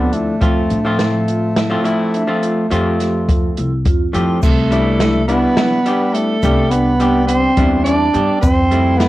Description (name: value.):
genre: progressive instrumental, band music in an uneven meter.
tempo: 105 BPM.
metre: 7/4.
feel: straight.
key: unclear.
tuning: A4 = 440 Hz.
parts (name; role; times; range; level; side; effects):
mellow bass clarinet; melody; 0.0-9.1 s; F3 to D4; -17 LUFS; equal; cassette tape, plate reverb.
vintage hollow-body jazz guitar; accompaniment; 0.0-9.1 s; F3 to G4; -19 LUFS; left 1 dB; cassette tape, plate reverb.
upright bass; bass; 0.0-9.1 s; C2 to A2; -20 LUFS; equal; none.
vibraphone with soft mallets; arpeggios; 0.1-9.1 s; B3 to G4; -26 LUFS; right 3 dB; cassette tape, plate reverb.
open jazz drum kit; drums; 0.1-9.1 s; crash cymbal, hi-hat, kick drum, snare drum; -18 LUFS; equal; cassette tape.
raspy alto saxophone; second line; 4.1-9.1 s; F4 to D5; -22 LUFS; right 2 dB; cassette tape, plate reverb.
egg shaker; percussion; 4.4-8.7 s; none; -41 LUFS; left 6 dB; none.
room: moderate studio reverb, RT60 0.6 s.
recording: home recording on cassette.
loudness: -13 LUFS.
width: side -16 dB against mid.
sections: 0.0-4.4 A section; 4.4-9.1 B section.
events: none.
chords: 0.4 F; 4.4 Cmaj7; 8.4 Fmaj7.